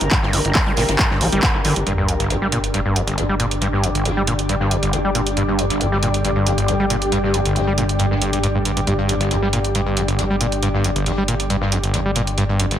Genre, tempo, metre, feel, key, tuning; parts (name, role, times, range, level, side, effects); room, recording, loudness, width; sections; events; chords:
driving peak-time techno; 137 BPM; 4/4; straight; G minor; A4 = 441 Hz
gritty driven synth bass; bass; 0.0-12.8 s; G1 to A1; -24 LUFS; equal; sidechain pumping
punchy analog drum machine; drums; 0.0-12.8 s; handclaps, hi-hat; -23 LUFS; right 2 dB; sidechain pumping on hats
granular cloud pad; texture; 0.0-12.8 s; D4 to D5; -24 LUFS; left 1 dB; built-in reverb, sidechain pumping
overdriven acid bass; riff; 0.1-12.8 s; G1 to G3; -21 LUFS; equal; distortion, sidechain pumping, tape echo
electronic kick drum; drums; 0.1-1.5 s; -19 LUFS; equal; overdrive
open jazz drum kit; drums; 0.1-12.8 s; hi-hat, snare drum; -33 LUFS; left 4 dB; sidechain pumping on hats, high-pass filter on hats, low-pass filter on hats, high-pass filter on snare, low-pass filter on snare, high-pass filter on room, low-pass filter on room
deep dark ambient pad; drone; 3.2-12.8 s; G2 to D3; -26 LUFS; left 1 dB; chorus, built-in reverb, sidechain pumping
sub drop and riser; sound effects; 1.9-3.6, 12.4-12.8 s; -28 LUFS; equal
moderate spring reverb, RT60 1.3 s, digital ambience; echo-heavy mix; -16 LUFS; side -10 dB against mid
0.0-1.9 A section; 1.9-12.8 B section
band accent 1.4; impact 1.9-3.6
0.0 G5